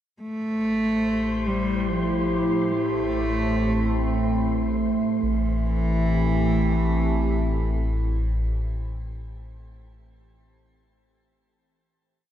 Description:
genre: ambient.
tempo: free time.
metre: none.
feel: none.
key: A minor.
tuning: A4 = 440 Hz.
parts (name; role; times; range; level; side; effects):
rich cello; melody; 0.2-8.5 s; E3 to A3; -26 LUFS; equal; tape echo.
warbly tape-like pad; sustained chords; 1.2-8.5 s; A2 to G4; -26 LUFS; right 1 dB; chorus, built-in reverb, shimmer reverb.
deep rumbling drone; bass; 0.8-8.5 s; A1; -27 LUFS; equal; built-in reverb.
overtone-sweeping drone; drone; 1.9-8.6 s; A3 to E4; -34 LUFS; left 1 dB; chorus, built-in reverb.
wind-like tuned noise texture; texture; 0.6-5.2 s; C5 to C6; -36 LUFS; right 1 dB; built-in reverb, shimmer reverb.
room: moderate lush hall reverb, RT60 2.5 s.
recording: dark, warm production.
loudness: -21 LUFS.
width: side -10 dB against mid.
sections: 0.2-5.2 A section; 5.2-7.7 final chord.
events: fade-in on synth drone 0.2-5.2.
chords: 0.2 Am7.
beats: free time.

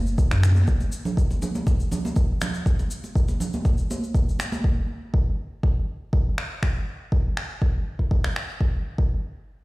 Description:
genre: afro house.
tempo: 121 BPM.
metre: 4/4.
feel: straight.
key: unclear.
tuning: A4 = 439 Hz.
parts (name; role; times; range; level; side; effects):
warm 808-style bass; bass; 0.0-0.6 s; F#1 to F#2; -19 LUFS; equal; sidechain pumping.
tube shaker; percussion; 0.1-4.6 s; none; -41 LUFS; left 2 dB; none.
electronic kick drum; drums; 0.2-9.1 s; none; -21 LUFS; equal; none.
congas; percussion; 0.2-4.6 s; none; -30 LUFS; right 2 dB; none.
deep house drum kit; drums; 0.3-8.5 s; finger snaps, toms; -31 LUFS; equal; none.
room: little or no reverb.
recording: played on a big sound system in a bare room, stone room reverb.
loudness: -22 LUFS.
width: side -22 dB against mid.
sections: 0.0-8.6 A section; 8.6-9.6 B section.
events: none.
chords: none.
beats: 0.18 | 0.68 1.17 1.67 2.16 | 2.66 3.15 3.65 4.15 | 4.64 5.14 5.63 6.13 | 6.63 7.12 7.62 8.11 | 8.61 9.11.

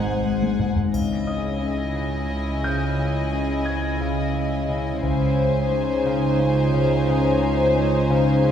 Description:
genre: cinematic, suspense film score.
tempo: 88 BPM.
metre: 3/4.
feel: straight.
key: C# hungarian minor.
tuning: A4 = 439 Hz.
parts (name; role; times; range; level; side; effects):
warm chamber violin section; melody; 0.0-8.5 s; G#5; -34 LUFS; left 4 dB; none.
rich symphonic violin section; second line; 0.0-8.5 s; B#4 to F#5; -26 LUFS; left 2 dB; none.
warm studio viola section; accompaniment; 0.0-8.5 s; D#4 to E4; -31 LUFS; right 1 dB; none.
Celtic harp; riff; 0.0-8.5 s; G#2 to C#4; -26 LUFS; left 5 dB; none.
warm symphonic cello section; bass; 0.0-8.5 s; G#2 to C#3; -26 LUFS; right 1 dB; none.
warm symphonic double bass section; bass; 0.0-8.5 s; G#1 to C#2; -29 LUFS; right 2 dB; none.
analog drone; drone; 0.0-8.5 s; G#1 to C#2; -28 LUFS; right 1 dB; chorus.
taiko ensemble; drums; 0.4-6.3 s; none; -28 LUFS; equal; none.
triangle; percussion; 0.9-2.3 s; none; -46 LUFS; left 3 dB; none.
bright concert grand piano; texture; 1.3-8.5 s; D#5 to G#6; -35 LUFS; left 1 dB; none.
room: wet scoring stage reverb, RT60 1.6 s.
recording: heard from further back in the room.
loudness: -19 LUFS.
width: side -9 dB against mid.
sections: 0.9-8.5 A section.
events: drum fill 0.4-0.9.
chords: 0.0 G#7; 0.9 C#madd9; 5.0 G#/C#.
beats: 0.25 | 0.93 1.61 2.30 | 2.98 3.66 4.34 | 5.03 5.71 6.39 | 7.07 7.75 8.43.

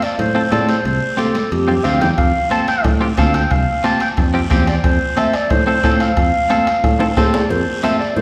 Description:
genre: latin, cumbia.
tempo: 180 BPM.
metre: 4/4.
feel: straight.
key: F major.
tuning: A4 = 439 Hz.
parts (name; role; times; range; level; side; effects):
warm clarinet; melody; 0.0-8.2 s; G4 to A5; -21 LUFS; equal; none.
semi-hollow electric guitar; accompaniment; 0.0-8.0 s; C4 to A4; -24 LUFS; equal; none.
guiro; percussion; 0.0-8.2 s; none; -35 LUFS; equal; none.
timbales and cowbell; percussion; 0.0-8.2 s; none; -31 LUFS; equal; none.
picked electric bass; bass; 0.2-8.2 s; C2 to A2; -22 LUFS; equal; none.
congas; percussion; 0.2-8.2 s; none; -26 LUFS; equal; none.
bombo; percussion; 2.2-7.5 s; none; -22 LUFS; equal; none.
room: wet recital hall reverb, RT60 1.7 s.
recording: recorded in a church or concert hall.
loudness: -16 LUFS.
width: mono.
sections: 0.0-7.5 A section.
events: drum fill 1.2-2.2, 7.0-7.5.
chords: 0.0 F; 0.9 Csus4; 2.2 F; 3.5 Csus4; 4.8 F.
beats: 0.19 0.52 | 0.85 1.18 1.52 1.85 | 2.18 2.51 2.84 3.18 | 3.51 3.84 4.17 4.51 | 4.84 5.17 5.50 5.84 | 6.17 6.50 6.84 7.17 | 7.50 7.83 8.17.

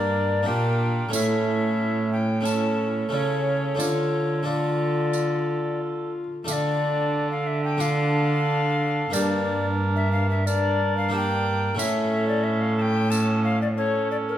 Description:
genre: classical, renaissance-style consort dance.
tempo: 90 BPM.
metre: 4/4.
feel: straight.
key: D harmonic minor.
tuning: A4 = 440 Hz.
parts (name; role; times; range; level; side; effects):
tenor recorder; melody; 0.0-14.4 s; Bb4 to A5; -28 LUFS; left 5 dB; none.
mellow cor anglais; second line; 0.0-14.4 s; A4 to Bb4; -30 LUFS; right 4 dB; none.
harpsichord; accompaniment; 0.0-14.4 s; G2 to G4; -29 LUFS; equal; none.
warm viola; accompaniment; 0.0-14.4 s; C#4 to F4; -31 LUFS; left 2 dB; none.
rich cello; bass; 0.0-14.4 s; G2 to D3; -26 LUFS; right 1 dB; none.
tambourine; percussion; 1.1-13.4 s; none; -34 LUFS; right 9 dB; none.
room: wet recital hall reverb, RT60 1.3 s.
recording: none.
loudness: -21 LUFS.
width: side -11 dB against mid.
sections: 0.0-6.5 A section; 6.5-14.4 A section.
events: none.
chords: 0.0 Gm; 1.1 A; 3.8 Dm; 9.1 Gm; 11.8 A.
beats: 0.47 | 1.14 1.80 2.46 3.13 | 3.79 4.46 5.14 5.81 | 6.48 7.14 7.81 8.47 | 9.14 9.80 10.47 11.13 | 11.79 12.45 13.12 13.78.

